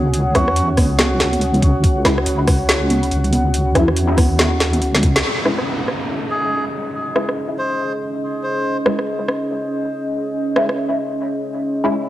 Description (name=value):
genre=deep dubstep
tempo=141 BPM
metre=4/4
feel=swing 61% on 16ths, half-time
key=C# harmonic minor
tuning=A4 = 443 Hz
part: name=dark analog pad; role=sustained chords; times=0.0-12.1 s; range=C#4 to F#5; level=-22 LUFS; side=right 1 dB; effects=chorus, cassette tape
part: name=deep soft wobble bass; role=bass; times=0.0-5.2 s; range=C#2 to E2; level=-19 LUFS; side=equal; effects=chorus
part: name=garage drum kit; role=drums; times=0.1-10.8 s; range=hi-hat, rim click, snare drum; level=-19 LUFS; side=equal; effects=overdrive, low-pass filter on hats, cassette tape, low-pass filter on snare
part: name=melodica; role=melody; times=0.3-0.7, 6.3-8.8 s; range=F#4 to B#4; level=-26 LUFS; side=equal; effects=dub echo
part: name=filtered dub chord stab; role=stabs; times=0.3-12.0 s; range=G#3 to E4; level=-23 LUFS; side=left 1 dB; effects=phaser, ensemble chorus, vintage 12-bit sampler grit, cassette tape, dub echo
part: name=electronic kick drum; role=drums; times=0.3-5.1 s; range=none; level=-17 LUFS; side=equal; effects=overdrive, cassette tape
part: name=congas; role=percussion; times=0.8-5.0 s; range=none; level=-24 LUFS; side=right 1 dB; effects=dub echo
part: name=downlifter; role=sound effects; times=5.2-8.6 s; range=none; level=-27 LUFS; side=equal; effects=none
room=light reverb, digital ambience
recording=home recording on cassette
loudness=-16 LUFS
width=side -14 dB against mid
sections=0.0-5.2 A section; 5.2-12.1 B section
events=filter sweep on synth stab 0.0-5.2; drum fill 4.9-5.2; band accent 5.1; filter sweep on drum 5.2-12.1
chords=0.0 C#m; 5.2 C#5